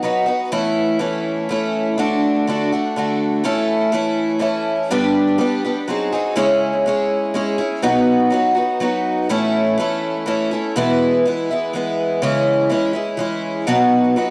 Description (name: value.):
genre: rock.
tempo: 123 BPM.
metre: 3/4.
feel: straight.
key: unclear.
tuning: A4 = 440 Hz.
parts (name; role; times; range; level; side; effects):
picked twelve-string acoustic guitar; solo; 0.0-14.3 s; E2 to G#4; -19 LUFS; equal; cassette tape, tape echo.
room: moderate spring reverb, RT60 1.2 s, small room ambience.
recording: home recording on cassette.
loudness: -19 LUFS.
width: mono.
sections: 0.5-6.4 A section; 6.4-14.3 B section.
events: none.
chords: 0.0 B; 0.5 A; 2.0 D; 3.5 A; 4.9 G; 5.9 G#7; 6.4 C#m; 7.8 B; 9.3 A; 10.8 E; 12.2 C#m; 13.7 B.